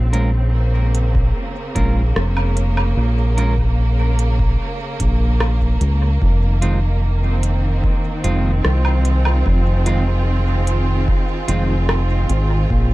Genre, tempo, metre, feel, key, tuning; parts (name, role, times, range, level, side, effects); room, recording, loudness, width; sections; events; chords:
ambient dub; 74 BPM; 4/4; straight; F minor; A4 = 439 Hz
bright studio string section; sustained chords; 0.0-12.9 s; Db3 to Ab4; -24 LUFS; right 1 dB
fingered electric bass; bass; 0.0-12.9 s; F1 to Db2; -16 LUFS; equal
clean electric guitar; stabs; 0.1-11.7 s; Eb3 to Bb4; -28 LUFS; right 2 dB; dub echo
organic electronic drum kit; drums; 0.1-12.5 s; hi-hat, rim click, woodblock; -26 LUFS; equal; dub echo
electronic kick drum; drums; 1.1-12.9 s; -20 LUFS; equal; overdrive
little or no reverb; dark, warm production; -15 LUFS; side -18 dB against mid
0.0-6.2 A section; 6.2-12.9 B section
0.0 Bbm; 6.2 Fm7